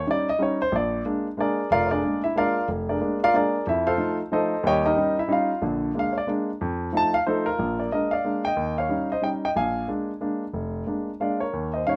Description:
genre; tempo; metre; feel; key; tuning
jazz; 183 BPM; 3/4; swing 62% on 8ths; Bb mixolydian; A4 = 439 Hz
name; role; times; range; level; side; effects
warm grand piano; solo; 0.0-12.0 s; F1 to A5; -25 LUFS; equal; none
room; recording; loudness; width
moderate studio reverb, RT60 0.6 s; rough home demo mix; -25 LUFS; mono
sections
0.0-7.6 A section; 7.6-12.0 B section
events
grand piano solo 0.0-7.6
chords
0.0 Eb7; 0.7 Bb7; 3.7 F7; 4.6 Eb7; 5.6 Bb7; 6.6 F7; 7.6 Bb7; 8.6 Eb7; 9.6 Bb7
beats
0.06 0.39 | 0.72 1.04 1.37 | 1.70 2.02 2.35 | 2.68 3.01 3.33 | 3.66 3.99 4.32 | 4.64 4.97 5.30 | 5.62 5.95 6.28 | 6.61 6.93 7.26 | 7.59 7.92 8.24 | 8.57 8.90 9.23 | 9.56 9.89 10.22 | 10.55 10.88 11.20 | 11.53 11.86

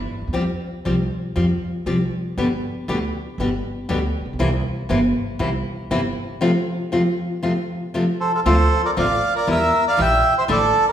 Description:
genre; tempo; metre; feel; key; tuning
tango; 118 BPM; 4/4; rubato; F major; A4 = 440 Hz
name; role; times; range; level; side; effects
upright bass; bass; 0.0-10.7 s; G1 to F2; -24 LUFS; right 1 dB; none
nylon-string guitar; accompaniment; 0.3-10.6 s; B2 to G4; -22 LUFS; left 2 dB; none
bandoneon; melody; 8.2-10.9 s; F4 to G5; -16 LUFS; right 1 dB; none
room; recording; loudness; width
wet recital hall reverb, RT60 1.6 s; recorded in a church or concert hall; -18 LUFS; side -10 dB against mid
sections
0.0-8.5 A section; 8.5-10.9 B section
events
none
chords
0.3 Fsus2; 2.4 G; 4.4 C7; 6.4 F; 8.5 Dm7; 9.5 Edim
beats
| 0.34 0.86 1.36 1.87 | 2.38 2.88 3.39 3.89 | 4.39 4.90 5.40 5.90 | 6.41 6.92 7.43 7.94 | 8.46 8.97 9.48 9.99 | 10.49

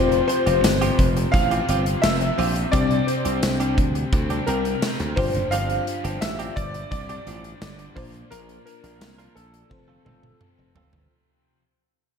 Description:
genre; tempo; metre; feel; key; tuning
1980s-style pop; 86 BPM; 4/4; straight; F major; A4 = 440 Hz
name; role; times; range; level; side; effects
clear grand piano; melody; 0.0-10.7 s; A4 to F5; -25 LUFS; left 1 dB; analog chorus, analog delay
FM electric piano; accompaniment; 0.0-11.1 s; G2 to D5; -28 LUFS; left 4 dB; chorus
distorted electric guitar; accompaniment; 0.0-11.6 s; F2 to C4; -33 LUFS; left 1 dB; distortion, lush chorus
direct-recorded clean electric guitar; riff; 0.0-11.0 s; F3 to Bb4; -30 LUFS; right 4 dB; lush chorus, analog delay
slap bass; bass; 0.0-11.1 s; F1 to D2; -26 LUFS; equal; none
big rock drum kit; drums; 0.1-11.1 s; hi-hat, kick drum, snare drum, tambourine, toms; -25 LUFS; equal; none
room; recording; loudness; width
moderate lush hall reverb, RT60 1.9 s; dreamy mix soaked in reverb; -19 LUFS; side -7 dB against mid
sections
0.0-11.1 A section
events
fade-out 0.0-11.1; drum fill 9.7-11.1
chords
0.0 Fsus2; 2.7 Csus2; 5.2 G7sus4; 8.0 Bb; 9.7 F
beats
0.64 1.34 2.04 | 2.73 3.43 4.13 4.83 | 5.52 6.22 6.92 7.62 | 8.31 9.01 9.71 10.41

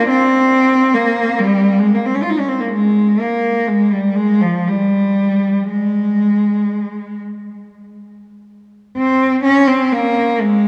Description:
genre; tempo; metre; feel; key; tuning
classical, free, expressive piece for unaccompanied cello; 29-48 BPM (dotted quarters); 6/8; rubato; Ab major; A4 = 440 Hz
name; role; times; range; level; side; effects
rich cello; solo; 0.0-10.7 s; F3 to F4; -15 LUFS; equal; none
room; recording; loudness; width
wet church reverb, RT60 3.7 s; dark, warm production; -15 LUFS; mono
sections
0.0-9.0 A section; 9.0-10.7 A section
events
none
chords
none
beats
| 0.09 1.40 | 2.73 4.19 | 5.70 7.24 | 8.97 10.39

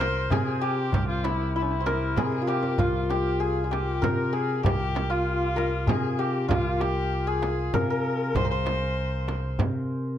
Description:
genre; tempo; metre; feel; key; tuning
Persian modal ensemble; 97 BPM; 3/4; straight; C dastgah homayun; A4 = 440 Hz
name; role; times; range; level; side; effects
santur; melody; 0.0-10.2 s; E4 to C5; -28 LUFS; left 2 dB; none
warm kamancheh; second line; 0.0-9.6 s; Db4+44c to C5; -32 LUFS; left 3 dB; none
mellow fretless electric bass; bass; 0.0-10.2 s; C2 to C3; -28 LUFS; right 1 dB; none
frame drum; percussion; 0.0-9.7 s; none; -31 LUFS; right 4 dB; none
tombak; percussion; 0.0-9.7 s; none; -31 LUFS; left 1 dB; none
room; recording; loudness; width
little or no reverb; close, detailed microphones; -23 LUFS; side -10 dB against mid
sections
0.0-10.2 A section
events
drum fill 2.2-2.8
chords
none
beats
0.32 | 0.94 1.55 2.17 | 2.79 3.41 4.03 | 4.65 5.27 5.89 | 6.51 7.12 7.74 | 8.36 8.98 9.60

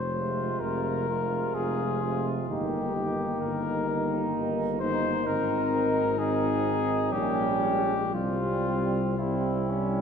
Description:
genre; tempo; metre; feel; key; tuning
classical, hymn-like piece for brass band; 57-65 BPM; 3/4; rubato; F minor; A4 = 440 Hz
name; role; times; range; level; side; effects
warm cornet; melody; 0.0-10.0 s; E4 to C5; -30 LUFS; left 5 dB; none
mellow tuba; bass; 0.0-10.0 s; F1 to C2; -32 LUFS; equal; none
warm flugelhorn; second line; 0.1-10.0 s; C4 to F4; -32 LUFS; right 6 dB; none
clear trombone; accompaniment; 0.1-10.0 s; C3 to G3; -34 LUFS; right 3 dB; none
mellow euphonium; accompaniment; 0.1-10.0 s; G3 to C4; -34 LUFS; left 3 dB; none
room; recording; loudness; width
wet church reverb, RT60 3.2 s; recorded in a church or concert hall; -25 LUFS; side -7 dB against mid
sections
0.0-10.0 A section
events
none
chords
0.0 Fm; 2.5 Eb/G; 5.3 Ab; 7.1 Gdim/Bb; 8.1 C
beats
0.61 1.56 | 2.49 3.43 4.35 | 5.27 6.19 7.13 | 8.14 9.19

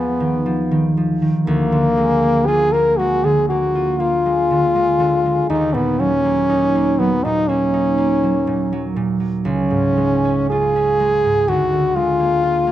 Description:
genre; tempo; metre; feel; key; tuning
classical, romantic duo for French horn and harp; 55-64 BPM; 4/4; rubato; Eb minor; A4 = 440 Hz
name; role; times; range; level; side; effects
clear French horn; melody; 0.0-12.7 s; Bb3 to Bb4; -16 LUFS; left 1 dB; none
concert harp; accompaniment; 0.0-12.7 s; Db2 to F4; -19 LUFS; right 1 dB; none
room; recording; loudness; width
light reverb; close, detailed microphones; -15 LUFS; side -12 dB against mid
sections
0.0-12.7 A section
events
none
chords
0.0 Fm7b5/Eb; 1.5 Bb7/D; 5.5 Ebm; 9.4 Db; 11.5 Bb7/D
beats
0.44 | 1.46 2.47 3.48 4.50 | 5.50 6.50 7.49 8.48 | 9.45 10.50 11.48 12.43

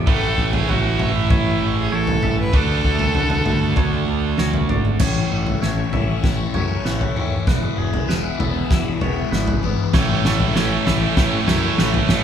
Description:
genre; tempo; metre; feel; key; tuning
post-rock; 97 BPM; 4/4; straight; A major; A4 = 442 Hz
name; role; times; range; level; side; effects
rich studio string section; sustained chords; 0.0-12.2 s; D4 to C#6; -34 LUFS; left 2 dB; none
twangy electric guitar; arpeggios; 0.0-12.2 s; E2 to F#4; -33 LUFS; equal; none
twangy electric guitar; arpeggios; 0.0-12.2 s; G#4 to E5; -32 LUFS; right 3 dB; none
distorted electric guitar; riff; 0.0-5.0, 9.9-12.2 s; A2 to D4; -22 LUFS; right 6 dB; overdrive
growling picked electric bass; bass; 0.0-12.2 s; E1 to F#2; -24 LUFS; equal; overdrive
muted violin; melody; 0.1-4.4 s; E4 to B4; -24 LUFS; left 1 dB; none
loose indie drum kit; drums; 0.1-12.2 s; crash cymbal, kick drum, snare drum, toms; -21 LUFS; equal; none
overdriven semi-hollow guitar; riff; 5.0-12.2 s; A2 to E4; -24 LUFS; left 6 dB; phaser
room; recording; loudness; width
wet large studio reverb, RT60 1.1 s; band playing live in one room; -17 LUFS; side -8 dB against mid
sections
0.0-5.0 A section; 5.0-12.2 B section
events
build-up 5.0-12.2; drum fill 5.0-12.2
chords
0.1 A; 2.5 D; 5.0 A; 7.5 E; 9.9 A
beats
| 0.08 0.69 1.31 1.93 | 2.54 3.16 3.77 4.39 | 5.01 5.63 6.24 6.86 | 7.48 8.09 8.71 9.32 | 9.94 10.55 11.17 11.78

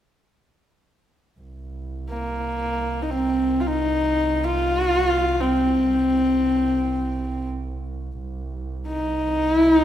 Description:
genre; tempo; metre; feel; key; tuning
mongolian traditional; free time; none; none; C yu mode; A4 = 440 Hz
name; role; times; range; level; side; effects
dark double bass; drone; 1.4-9.8 s; C2; -29 LUFS; right 2 dB; none
rich horsehead fiddle; melody; 2.1-9.8 s; Bb3 to F4; -20 LUFS; left 1 dB; none
room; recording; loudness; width
moderate scoring stage reverb, RT60 1.7 s; minimal, uncompressed stereo recording; -20 LUFS; side -11 dB against mid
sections
1.4-9.8 A section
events
none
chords
none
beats
free time

